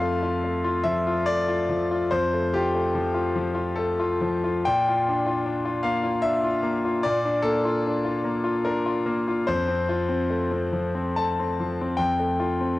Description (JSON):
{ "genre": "neoclassical minimalist piano", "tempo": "73 BPM", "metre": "3/4", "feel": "rubato", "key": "F major", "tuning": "A4 = 440 Hz", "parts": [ { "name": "clear concert grand piano", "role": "solo", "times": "0.0-12.8 s", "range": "F2 to A5", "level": "-22 LUFS", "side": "left 1 dB", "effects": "none" } ], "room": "moderate lush hall reverb, RT60 2.6 s", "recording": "home recording on cassette", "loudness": "-22 LUFS", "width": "side -17 dB against mid", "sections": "0.0-12.8 A section", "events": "none", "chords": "0.0 F; 4.6 Bb; 9.5 F" }